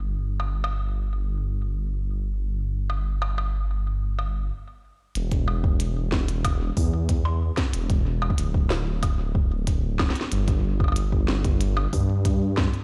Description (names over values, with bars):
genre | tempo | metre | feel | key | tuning
IDM | 93 BPM | 4/4 | straight | unclear | A4 = 438 Hz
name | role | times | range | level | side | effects
dark detuned saw bass | bass | 0.0-12.7 s | D1 to G2 | -27 LUFS | equal | none
glitchy drum kit | drums | 0.4-12.8 s | hi-hat, percussion blips, snare drum | -33 LUFS | equal | studio reverb, delay
electronic kick drum | drums | 5.3-12.7 s | none | -27 LUFS | equal | studio reverb
room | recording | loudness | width
digital ambience | played on a big sound system in a bare room, large studio reverb | -25 LUFS | mono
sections
0.0-5.2 A section; 5.2-12.8 B section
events
stop 4.5-5.2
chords
none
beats
0.64 1.28 1.93 | 2.57 3.22 3.86 4.51 | 5.16 5.80 6.45 7.09 | 7.74 8.38 9.03 9.67 | 10.32 10.96 11.61 12.25